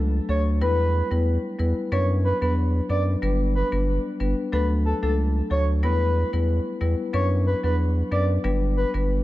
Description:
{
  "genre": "dancehall",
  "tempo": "92 BPM",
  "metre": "4/4",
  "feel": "straight",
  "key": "B minor",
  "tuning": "A4 = 440 Hz",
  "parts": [
    { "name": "saturated sub bass", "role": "bass", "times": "0.0-9.2 s", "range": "G1 to F#2", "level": "-22 LUFS", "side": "equal", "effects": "none" },
    { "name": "breathy flute-like synth lead", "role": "melody", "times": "0.3-8.9 s", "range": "A4 to D5", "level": "-28 LUFS", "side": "equal", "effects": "chorus, tape echo" },
    { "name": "marimba with medium mallets", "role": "accompaniment", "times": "0.3-9.2 s", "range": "F#3 to B4", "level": "-27 LUFS", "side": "left 3 dB", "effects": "none" }
  ],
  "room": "small room ambience",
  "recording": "dark, warm production",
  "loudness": "-21 LUFS",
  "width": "side -16 dB against mid",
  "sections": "0.0-9.2 A section",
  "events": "none",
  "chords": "0.0 D; 0.6 Em; 1.9 Bm; 3.2 G; 4.5 D; 5.8 Em; 7.1 Bm; 8.4 G"
}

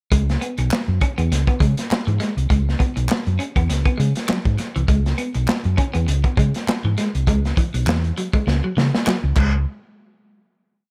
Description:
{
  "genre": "funk",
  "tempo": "101 BPM",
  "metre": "4/4",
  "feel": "swing 56% on 16ths",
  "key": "C# minor",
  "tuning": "A4 = 440 Hz",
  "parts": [
    { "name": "clean electric guitar", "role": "riff", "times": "0.1-9.5 s", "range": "E3 to C#4", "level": "-28 LUFS", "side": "equal", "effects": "subtle chorus" },
    { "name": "hollow-body short-scale fingered electric bass", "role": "bass", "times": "0.1-9.6 s", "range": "B1 to C#3", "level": "-22 LUFS", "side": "equal", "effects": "none" },
    { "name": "crunchy breakbeat drum kit", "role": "drums", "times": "0.1-9.5 s", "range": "crash cymbal, hi-hat, kick drum, snare drum", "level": "-23 LUFS", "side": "equal", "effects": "none" },
    { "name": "group handclap", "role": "percussion", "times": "0.7-9.6 s", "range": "none", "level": "-32 LUFS", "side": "equal", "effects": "none" }
  ],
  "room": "studio ambience",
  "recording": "none",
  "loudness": "-20 LUFS",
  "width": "mono",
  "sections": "0.1-9.7 groove; 9.7-10.9 final hit",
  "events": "drum fill 8.5-9.7",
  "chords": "0.1 C#m7; 9.4 C#5; 9.7 N.C."
}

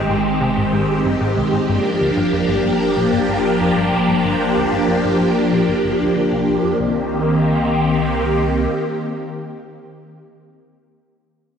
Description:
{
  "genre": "ambient, sequencer-driven space music",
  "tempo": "94 BPM",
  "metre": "4/4",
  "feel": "straight",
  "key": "C minor",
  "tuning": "A4 = 441 Hz",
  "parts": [
    { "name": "phased string machine", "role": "sustained chords", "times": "0.0-10.0 s", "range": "Eb3 to G4", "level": "-16 LUFS", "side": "equal", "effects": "ensemble chorus, phaser" },
    { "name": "plucky analog bass", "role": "riff", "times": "0.0-7.1 s", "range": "G1 to D3", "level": "-25 LUFS", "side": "equal", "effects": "lush chorus, tape echo" },
    { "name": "warm sub bass", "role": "bass", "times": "0.0-8.7 s", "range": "G1 to C2", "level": "-32 LUFS", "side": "equal", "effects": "none" }
  ],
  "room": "wet lush hall reverb, RT60 2.6 s",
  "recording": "dreamy mix soaked in reverb",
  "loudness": "-15 LUFS",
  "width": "side -7 dB against mid",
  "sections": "0.0-6.8 A section; 6.8-9.3 B section",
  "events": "fade-out on analog synth bass 0.0-6.8; fade-out on sub bass 0.0-6.8",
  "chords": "0.0 Abmaj7; 1.7 Gm7; 6.8 Cm7"
}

